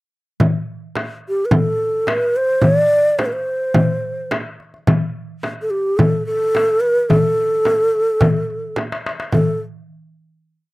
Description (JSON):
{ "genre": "Arabic maqam ensemble", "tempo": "108 BPM", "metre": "4/4", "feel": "straight", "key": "A maqam bayati", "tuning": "A4 = 441 Hz", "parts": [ { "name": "darbuka", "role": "percussion", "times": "0.4-9.6 s", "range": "none", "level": "-20 LUFS", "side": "left 2 dB", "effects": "none" }, { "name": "frame drum", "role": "percussion", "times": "0.4-9.6 s", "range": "none", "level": "-21 LUFS", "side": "right 1 dB", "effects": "none" }, { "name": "breathy mellow low ney", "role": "melody", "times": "1.3-9.6 s", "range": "G4 to D5", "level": "-16 LUFS", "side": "equal", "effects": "none" } ], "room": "light reverb", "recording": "dry, close 1970s-style studio recording", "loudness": "-15 LUFS", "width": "side -20 dB against mid", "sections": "0.4-9.3 A section; 9.3-10.7 final note", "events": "drum fill 8.8-9.3", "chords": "none", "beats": "| 0.40 0.96 1.52 2.07 | 2.63 3.19 3.75 4.30 | 4.86 5.42 5.98 6.54 | 7.09 7.65 8.21 8.77 | 9.32" }